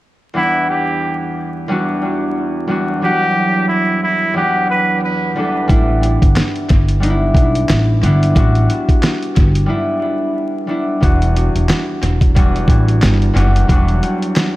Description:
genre	hip hop, boom-bap hip-hop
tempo	90 BPM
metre	4/4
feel	swing 57% on 16ths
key	E minor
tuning	A4 = 440 Hz
part	concert harp	accompaniment	0.3-14.6 s	E2 to F#5	-17 LUFS	equal	high-pass filter, low-pass filter, tape echo
part	trumpet with straight mute	melody	0.4-5.0 s	E4 to B4	-17 LUFS	right 2 dB	high-pass filter, low-pass filter, tape echo
part	upright bass	bass	5.7-14.0 s	E1 to B1	-14 LUFS	equal	none
part	dusty soul sampler-style drum kit	drums	5.7-14.5 s	handclaps, hi-hat, kick drum, snare drum	-14 LUFS	equal	tape echo
room	light reverb, studio reverb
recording	echo-heavy mix, vinyl crackle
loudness	-12 LUFS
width	side -17 dB against mid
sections	0.4-11.0 A section; 11.0-14.6 B section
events	break 9.7-11.0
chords	0.4 Em7; 5.7 A7sus4; 11.0 Em7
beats	| 0.36 1.03 1.70 2.36 | 3.03 3.70 4.36 5.03 | 5.70 6.36 7.03 7.70 | 8.36 9.03 9.70 10.36 | 11.03 11.70 12.36 13.03 | 13.70 14.36

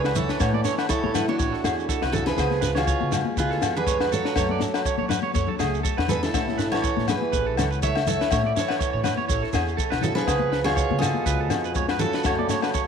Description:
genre	highlife guitar band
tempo	122 BPM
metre	4/4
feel	swing 55% on 16ths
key	A major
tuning	A4 = 440 Hz
part	picked steel-string acoustic guitar	melody	0.0-12.9 s	D4 to E5	-26 LUFS	right 1 dB	none
part	bright trombone	second line	0.0-12.9 s	A2 to A3	-34 LUFS	right 11 dB	none
part	flamenco guitar	accompaniment	0.0-12.9 s	F#2 to A4	-35 LUFS	left 10 dB	none
part	electric guitar at the edge of break-up	arpeggios	0.0-12.9 s	G#4 to D5	-30 LUFS	right 11 dB	wide subtle chorus, tape echo
part	upright bass	bass	0.0-12.5 s	A1 to F#3	-29 LUFS	right 1 dB	none
part	compact cocktail drum kit	drums	0.0-12.9 s	kick drum, snare drum	-28 LUFS	left 3 dB	none
part	agogo bells	percussion	0.1-12.7 s	none	-32 LUFS	left 14 dB	none
part	congas	percussion	0.2-12.6 s	none	-32 LUFS	left 11 dB	none
part	shekere	percussion	0.2-12.9 s	none	-33 LUFS	right 7 dB	none
room	moderate echo chamber reverb, RT60 2.3 s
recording	1960s-style stereo with parts hard left and right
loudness	-21 LUFS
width	side -7 dB against mid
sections	0.0-12.9 A section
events	none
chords	0.0 A; 2.4 C#7; 4.4 F#m; 6.3 A; 10.3 C#7; 12.3 F#m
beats	| 0.41 0.91 1.40 1.90 | 2.39 2.88 3.38 3.87 | 4.36 4.86 5.35 5.84 | 6.33 6.83 7.32 7.82 | 8.31 8.80 9.29 9.79 | 10.28 10.77 11.27 11.76 | 12.25 12.74

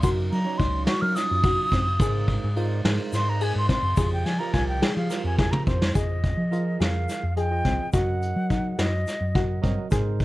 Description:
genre	progressive instrumental, band music in an uneven meter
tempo	212 BPM (eighths)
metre	7/8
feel	straight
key	F minor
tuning	A4 = 440 Hz
part	mellow silver concert flute	melody	0.0-10.2 s	C5 to F6	-29 LUFS	equal	none
part	tine electric piano	accompaniment	0.0-10.2 s	F3 to Gb5	-33 LUFS	right 7 dB	none
part	soft round pluck	arpeggios	0.0-10.2 s	C4 to Ab4	-32 LUFS	left 4 dB	chorus, tape echo
part	hollow-body short-scale fingered electric bass	bass	0.0-10.2 s	C2 to Gb3	-26 LUFS	equal	none
part	vintage brush drum kit	drums	0.0-10.2 s	hi-hat, kick drum, ride cymbal, snare drum, toms	-26 LUFS	equal	none
part	egg shaker	percussion	0.0-10.2 s	none	-46 LUFS	left 11 dB	none
room	light reverb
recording	dark, warm production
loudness	-22 LUFS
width	side -18 dB against mid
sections	0.0-6.0 A section; 6.0-10.2 B section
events	flute solo 0.0-6.0; drum fill 5.4-6.0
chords	0.0 Gb6; 2.0 Abadd9; 4.0 Fmadd9; 6.0 Fm7; 7.9 Gb6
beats	| 0.03 0.31 0.59 0.88 1.16 1.44 1.72 | 2.00 2.28 2.57 2.85 3.13 3.41 3.69 | 3.98 4.26 4.54 4.82 5.11 5.39 5.67 | 5.95 6.24 6.52 6.80 7.08 7.37 7.65 | 7.93 8.22 8.50 8.78 9.07 9.35 9.63 | 9.92 10.20

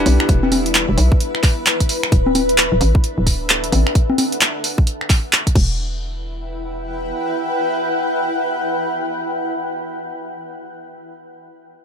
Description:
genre	UK garage, two-step garage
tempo	131 BPM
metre	4/4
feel	swing 62% on 16ths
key	E minor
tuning	A4 = 440 Hz
part	soft string machine	sustained chords	0.0-2.1 s	G3 to F#5	-30 LUFS	left 1 dB	ensemble chorus, sidechain pumping
part	bell-like tine electric piano	stabs	0.0-0.5 s	D4 to B4	-22 LUFS	left 2 dB	ping-pong delay
part	hollow knocking FM bass	bass	0.0-7.1 s	D1 to B1	-19 LUFS	equal	sidechain pumping
part	granular cloud pad	texture	0.0-10.2 s	D4 to G5	-22 LUFS	left 1 dB	built-in reverb, sidechain pumping
part	punchy analog drum machine	drums	0.1-5.7 s	congas, crash cymbal, finger snaps, handclaps, hi-hat	-17 LUFS	equal	none
part	electronic kick drum	drums	0.3-5.7 s	none	-15 LUFS	equal	none
room	light reverb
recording	none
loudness	-15 LUFS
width	side -7 dB against mid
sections	0.0-5.8 A section; 5.8-9.4 B section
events	drop 0.0-5.8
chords	0.0 Em7; 2.1 Dadd9; 5.6 E5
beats	| 0.29 0.75 1.20 1.66 | 2.12 2.58 3.04 3.49 | 3.95 4.41 4.87 5.33 | 5.79 6.24 6.70 7.16 | 7.62 8.07 8.53 8.99

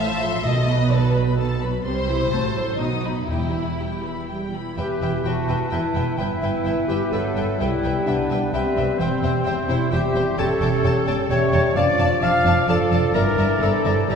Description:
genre	classical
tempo	129 BPM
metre	3/4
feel	rubato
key	E minor, D minor from 10.4 s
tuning	A4 = 441 Hz
part	warm symphonic violin section	melody	0.0-14.2 s	G5 to D#6	-33 LUFS	left 4 dB	none
part	warm symphonic violin section	second line	0.0-14.2 s	D#4 to G5	-28 LUFS	left 1 dB	none
part	clear studio viola section	accompaniment	0.0-14.2 s	D#3 to F5	-29 LUFS	equal	none
part	dark symphonic cello section	bass	0.0-14.2 s	C2 to C3	-26 LUFS	right 3 dB	none
part	warm symphonic double bass section	bass	0.0-14.2 s	E1 to C2	-26 LUFS	right 2 dB	none
part	timpani	percussion	0.5-1.1, 3.3-4.0 s	E2 to B2	-27 LUFS	right 1 dB	none
part	clear oboe	second line	4.8-14.2 s	B4 to D5	-31 LUFS	equal	none
part	mellow clarinet	second line	4.8-14.2 s	C4 to F5	-25 LUFS	left 1 dB	none
part	warm bassoon	accompaniment	4.8-14.2 s	E3 to G3	-29 LUFS	left 1 dB	none
part	mellow French horn section	sustained chords	4.8-14.2 s	B3 to G4	-27 LUFS	left 3 dB	none
part	mellow hollow concert flute	second line	5.3-14.2 s	C5 to A5	-31 LUFS	left 2 dB	none
room	wet concert hall reverb, RT60 2.3 s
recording	heard from further back in the room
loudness	-19 LUFS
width	side -6 dB against mid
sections	0.0-4.8 A section; 4.8-14.2 A section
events	none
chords	0.5 B7; 1.8 Cmaj7; 2.3 F#dim/A; 2.8 B; 3.3 Em; 6.2 Em/G; 7.6 Cmaj7; 9.0 C/E; 10.4 A7/E; 11.8 Dm/F; 13.1 Em7b5/G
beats	| 0.45 0.92 1.38 | 1.85 2.31 2.79 | 3.28 3.79 4.29 | 4.78 5.25 5.72 | 6.18 6.65 7.12 | 7.60 8.07 8.53 | 8.99 9.46 9.92 | 10.38 10.85 11.30 | 11.76 12.23 12.69 | 13.15 13.61 14.10

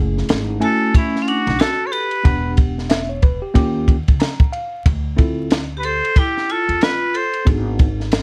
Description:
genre	hip hop, jazz-hop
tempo	92 BPM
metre	4/4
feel	swing 60% on 16ths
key	unclear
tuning	A4 = 440 Hz
part	mellow tine electric piano	accompaniment	0.0-7.9 s	A3 to A#5	-25 LUFS	equal	none
part	upright bass	bass	0.0-8.2 s	E1 to E2	-26 LUFS	equal	none
part	compact cocktail drum kit	drums	0.2-8.2 s	hi-hat, kick drum, ride cymbal, snare drum	-18 LUFS	equal	none
part	trumpet with straight mute	melody	0.6-7.5 s	E4 to C#5	-22 LUFS	equal	none
part	vibraphone with hard mallets	second line	0.6-7.5 s	C#4 to A4	-27 LUFS	equal	none
room	light reverb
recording	vinyl crackle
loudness	-18 LUFS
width	mono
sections	0.0-8.2 A section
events	tine electric piano fill 3.9-4.9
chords	0.0 F#m9; 2.2 Em9; 3.6 D#9; 4.9 Dm9; 7.5 G#m7b5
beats	0.29 0.94 1.59 | 2.25 2.90 3.55 4.20 | 4.86 5.51 6.16 6.81 | 7.46 8.12

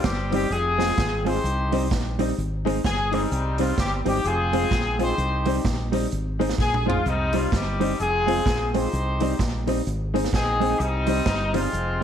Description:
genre	ska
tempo	128 BPM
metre	4/4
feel	swing 61% on 8ths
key	unclear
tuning	A4 = 441 Hz
part	clear horn section	melody	0.0-12.0 s	G3 to C5	-25 LUFS	left 2 dB	slapback echo
part	fingered electric bass	bass	0.0-12.0 s	F1 to C2	-27 LUFS	equal	none
part	street-band drum kit	drums	0.0-11.9 s	hi-hat, kick drum, snare drum, toms	-28 LUFS	right 2 dB	slapback echo
part	hollow-body jazz guitar	accompaniment	0.3-11.7 s	G3 to F4	-29 LUFS	right 11 dB	slapback echo
part	dark upright piano	stabs	0.3-12.0 s	C4 to C5	-30 LUFS	left 13 dB	tube saturation
room	light reverb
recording	1960s-style stereo with parts hard left and right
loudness	-21 LUFS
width	side -9 dB against mid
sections	0.0-12.0 A section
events	drum fill 6.6-7.1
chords	0.0 Cm; 0.5 Fm; 1.4 Cm; 2.4 Ab; 4.3 Fm; 5.2 Cm; 6.1 Ab; 7.1 Cm; 8.0 Fm; 8.9 Cm; 9.9 Ab; 10.8 Cm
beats	0.04 0.51 0.98 | 1.45 1.92 2.38 2.85 | 3.32 3.78 4.25 4.72 | 5.18 5.65 6.12 6.59 | 7.05 7.52 7.99 8.46 | 8.92 9.39 9.86 10.33 | 10.80 11.27 11.73

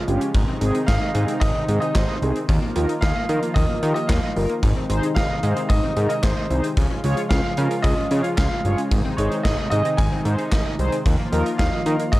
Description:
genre	synth-pop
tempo	112 BPM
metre	4/4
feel	straight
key	Ab major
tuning	A4 = 440 Hz
part	clear baby grand piano	melody	0.0-12.2 s	C5 to Ab5	-28 LUFS	right 1 dB	tape echo
part	brassy analog pad	sustained chords	0.0-12.2 s	C3 to F4	-28 LUFS	equal	chorus
part	analog pluck	arpeggios	0.0-12.2 s	Eb3 to F5	-31 LUFS	equal	chorus, tape echo
part	mellow synth brass	accompaniment	0.1-12.0 s	C4 to Eb5	-26 LUFS	equal	chorus
part	fat analog bass	bass	0.1-12.2 s	G1 to Eb3	-22 LUFS	equal	none
part	gated 80s drum kit	drums	0.1-12.2 s	handclaps, hi-hat, kick drum, snare drum	-22 LUFS	equal	none
room	small room ambience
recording	cassette tape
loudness	-18 LUFS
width	side -17 dB against mid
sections	0.0-12.2 A section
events	none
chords	0.3 Ab; 2.5 Ebsus2; 4.6 Ab; 6.8 Db; 8.9 Ab; 11.1 Ebsus2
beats	| 0.34 0.88 1.42 1.95 | 2.49 3.02 3.56 4.09 | 4.63 5.17 5.70 6.24 | 6.77 7.31 7.84 8.38 | 8.91 9.45 9.99 10.52 | 11.06 11.59 12.13

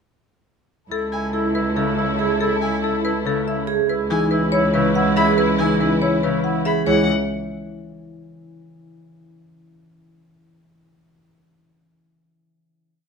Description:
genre	classical, minimalist pattern music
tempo	282 BPM (eighths)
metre	7/8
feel	straight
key	C# minor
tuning	A4 = 439 Hz
part	marimba with medium hard mallets	melody	0.9-7.1 s	G#4 to F#5	-25 LUFS	left 5 dB	none
part	warm oboe	second line	0.9-6.6 s	E4	-26 LUFS	right 2 dB	none
part	warm symphonic string section	sustained chords	0.9-6.6 s	E4 to B4	-28 LUFS	equal	none
part	rich cello	bass	0.9-7.1 s	C#2	-24 LUFS	right 2 dB	none
part	rich violin	arpeggios	1.1-7.1 s	F#5 to B5	-26 LUFS	left 5 dB	none
part	vibraphone with medium hard mallets	arpeggios	1.3-7.1 s	D#4 to G#4	-24 LUFS	right 7 dB	none
part	Celtic harp	accompaniment	1.8-7.1 s	C#3 to E3	-25 LUFS	left 2 dB	none
room	moderate large studio reverb, RT60 1.2 s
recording	none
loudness	-17 LUFS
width	side -6 dB against mid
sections	0.9-6.9 A section; 6.9-8.4 final chord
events	none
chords	0.9 Amaj7/C#; 3.9 C#m9; 6.9 C#m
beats	| 0.91 1.13 1.34 1.55 1.76 1.98 2.19 | 2.40 2.62 2.83 3.04 3.25 3.47 3.68 | 3.89 4.11 4.32 4.53 4.74 4.96 5.17 | 5.38 5.59 5.81 6.02 6.23 6.45 6.66 | 6.87

